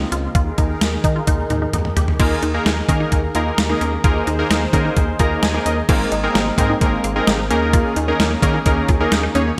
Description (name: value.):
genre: synth-pop.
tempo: 130 BPM.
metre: 4/4.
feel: straight.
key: unclear.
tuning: A4 = 440 Hz.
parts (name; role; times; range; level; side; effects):
brassy analog pad; sustained chords; 0.0-9.6 s; Db3 to C5; -28 LUFS; equal; chorus.
resonant blip pluck; arpeggios; 0.0-9.5 s; C4 to G4; -28 LUFS; equal; chorus, phaser, delay.
rubbery square bass; bass; 0.0-9.5 s; Ab1 to Eb3; -25 LUFS; equal; none.
detuned 8-bit digital drum machine; drums; 0.1-9.5 s; crash cymbal, hi-hat, kick drum, snare drum, toms; -22 LUFS; equal; gated reverb.
warm analog keys; accompaniment; 2.2-9.5 s; Bb3 to Bb5; -22 LUFS; equal; chorus.
room: moderate lush hall reverb, RT60 1.8 s.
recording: bright 1980s-style digital production.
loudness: -18 LUFS.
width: mono.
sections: 0.0-2.2 A section; 2.2-5.9 B section; 5.9-9.6 C section.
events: drum fill 1.3-2.2; synth keys fill 5.0-5.9.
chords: 0.3 Ebsus4; 5.9 Abadd9; 7.5 Eb7sus4.